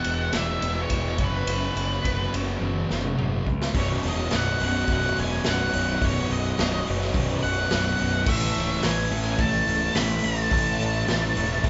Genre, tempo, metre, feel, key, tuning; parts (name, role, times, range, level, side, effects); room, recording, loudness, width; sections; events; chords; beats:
quiet-loud alternative rock; 106 BPM; 4/4; straight; B mixolydian from 3.7 s; A4 = 442 Hz
octave-fuzz lead guitar; melody; 0.0-11.7 s; B4 to B5; -30 LUFS; equal; distortion
fuzz guitar; riff; 0.0-11.7 s; B1 to F#4; -34 LUFS; equal; distortion
thick fuzz guitar; riff; 0.0-11.7 s; B1 to A3; -34 LUFS; equal; distortion
raw garage drum kit; drums; 0.0-11.7 s; crash cymbal, hi-hat, kick drum, ride cymbal, snare drum, toms; -30 LUFS; equal
fuzz picked electric bass; bass; 0.1-11.7 s; B0 to C#2; -31 LUFS; equal; overdrive
fuzz guitar; riff; 3.7-11.7 s; B1 to A4; -35 LUFS; equal
string machine, violins; sustained chords; 3.8-11.7 s; C#4 to F#5; -40 LUFS; equal
moderate large studio reverb, RT60 1.3 s; band playing live in one room, nothing above 7.7 kHz; -24 LUFS; mono
0.0-3.7 A section; 3.7-11.7 B section
half time 0.0-3.7; drum fill 2.6-3.7
0.0 E; 1.2 F#sus4; 3.7 Badd9; 8.3 Aadd9
0.34 0.91 | 1.48 2.04 2.61 3.18 | 3.75 4.32 4.88 5.45 | 6.01 6.58 7.14 7.71 | 8.27 8.83 9.40 9.96 | 10.52 11.09 11.65